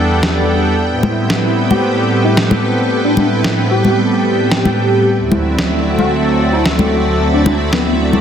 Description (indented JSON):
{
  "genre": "nu-disco, nu disco",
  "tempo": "112 BPM",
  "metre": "4/4",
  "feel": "straight",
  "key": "unclear",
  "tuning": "A4 = 439 Hz",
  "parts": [
    { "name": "warm analog pad", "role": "accompaniment", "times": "0.0-8.2 s", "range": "D2 to A4", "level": "-14 LUFS", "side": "equal", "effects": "chorus, digital delay" },
    { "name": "string machine, full ensemble", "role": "sustained chords", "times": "0.0-8.2 s", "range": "F#4 to G5", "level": "-20 LUFS", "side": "equal", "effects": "ensemble chorus" },
    { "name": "electronic snare drum", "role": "drums", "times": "0.2-7.8 s", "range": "none", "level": "-18 LUFS", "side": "equal", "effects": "none" },
    { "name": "congas", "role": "percussion", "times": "1.0-8.2 s", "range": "none", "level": "-17 LUFS", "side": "left 3 dB", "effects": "none" },
    { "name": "wide unison lead", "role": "melody", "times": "1.7-7.9 s", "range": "B3 to G4", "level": "-19 LUFS", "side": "left 1 dB", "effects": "ensemble chorus, vintage 12-bit sampler grit, digital delay" }
  ],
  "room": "light reverb, digital ambience",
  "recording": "dense, heavily limited modern master",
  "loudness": "-11 LUFS",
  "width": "side -8 dB against mid",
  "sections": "0.0-8.2 A section",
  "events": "none",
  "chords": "0.0 Em9; 0.8 Am9; 5.0 D9"
}